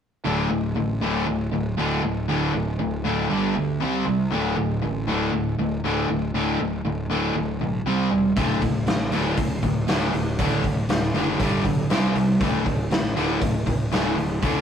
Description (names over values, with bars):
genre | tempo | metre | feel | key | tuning
hard rock | 119 BPM | 4/4 | straight | unclear | A4 = 438 Hz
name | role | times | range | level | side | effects
distorted electric guitar | riff | 0.2-14.6 s | D2 to C4 | -28 LUFS | left 6 dB | overdrive
overdriven semi-hollow guitar | riff | 0.2-14.6 s | D2 to C4 | -24 LUFS | right 2 dB | none
fuzz fingered electric bass | bass | 0.3-14.6 s | D1 to D2 | -29 LUFS | equal | overdrive
raw garage drum kit | drums | 8.4-14.5 s | hi-hat, kick drum, snare drum | -24 LUFS | equal | none
room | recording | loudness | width
moderate stone room reverb, RT60 1.2 s | rough rehearsal-room recording, warm saturation | -21 LUFS | side -8 dB against mid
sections
0.2-14.6 A section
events
none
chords
0.2 D5; 3.3 G5; 3.8 C5; 4.3 D5; 7.9 C5; 8.4 D5; 11.4 G5; 11.9 C5; 12.4 D5